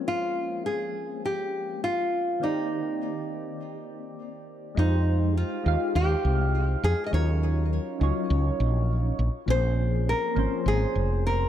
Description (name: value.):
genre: sunset chillout.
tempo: 102 BPM.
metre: 4/4.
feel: straight.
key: F minor.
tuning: A4 = 440 Hz.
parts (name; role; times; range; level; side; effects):
soft electric-piano-like synth keys; accompaniment; 0.0-11.5 s; Eb3 to F5; -31 LUFS; moving between left 4 dB and right 2 dB; chorus, phaser, auto-pan, digital delay.
nylon-string guitar; melody; 0.1-11.5 s; Eb4 to Eb5; -28 LUFS; equal; digital delay.
woody fretless electric bass; bass; 4.8-11.5 s; F1 to F2; -24 LUFS; equal; none.
room: light reverb, small room ambience.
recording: dark, warm production.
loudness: -24 LUFS.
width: side -11 dB against mid.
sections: 0.0-4.8 A section; 4.8-11.5 B section.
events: none.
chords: 0.0 Bbm9; 2.4 Cm9; 4.8 Fm9; 7.1 Ebm9; 9.2 Bbm9.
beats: | 0.07 0.66 1.25 1.83 | 2.42 3.01 3.60 4.19 | 4.77 5.36 5.95 6.54 | 7.13 7.72 8.30 8.89 | 9.48 10.07 10.66 11.24.